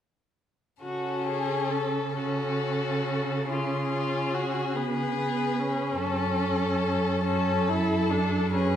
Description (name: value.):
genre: classical, slow romantic movement for string quartet.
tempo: 44-49 BPM (dotted quarters).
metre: 6/8.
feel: rubato.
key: F# minor.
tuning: A4 = 438 Hz.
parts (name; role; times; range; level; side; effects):
rich violin; melody; 0.8-8.8 s; F#4 to B4; -33 LUFS; left 7 dB; none.
rich violin; second line; 0.8-8.8 s; E#4 to A4; -31 LUFS; left 2 dB; none.
rich viola; accompaniment; 0.8-8.8 s; B3 to E4; -30 LUFS; right 1 dB; none.
rich cello; bass; 0.8-8.8 s; F#2 to C#3; -30 LUFS; right 3 dB; none.
room: wet recital hall reverb, RT60 1.4 s.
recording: recorded in a church or concert hall.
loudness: -25 LUFS.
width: side -9 dB against mid.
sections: 0.8-8.8 A section.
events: none.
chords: 0.8 F#m/C#; 3.5 C#7; 6.0 F#m.